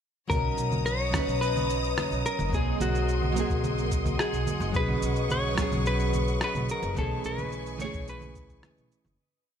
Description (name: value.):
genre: sunset chillout.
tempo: 108 BPM.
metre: 4/4.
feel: straight.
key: B major.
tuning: A4 = 441 Hz.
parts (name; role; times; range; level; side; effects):
semi-hollow electric guitar; melody; 0.3-8.9 s; F#4 to C#5; -32 LUFS; left 1 dB; digital delay.
nylon-string guitar; accompaniment; 0.3-9.2 s; E3 to B4; -32 LUFS; right 1 dB; auto-pan.
warm symphonic string section; sustained chords; 0.3-9.2 s; A#4 to D#6; -37 LUFS; left 3 dB; none.
upright bass; bass; 0.3-9.2 s; F#1 to B1; -30 LUFS; equal; none.
electronic congas, cabasa and rim click; drums; 0.3-9.2 s; none; -34 LUFS; right 2 dB; none.
electronic kick drum; drums; 0.3-8.6 s; none; -32 LUFS; equal; none.
wind-like tuned noise texture; texture; 1.1-9.2 s; D#5 to D#6; -40 LUFS; right 2 dB; built-in reverb.
room: light reverb, studio reverb.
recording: none.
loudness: -25 LUFS.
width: side -8 dB against mid.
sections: 0.3-9.2 groove.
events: fade-out 6.2-9.2.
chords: 0.3 Bmaj9; 2.5 G#9/B; 4.7 C#7sus4/B; 7.0 Amaj9/B.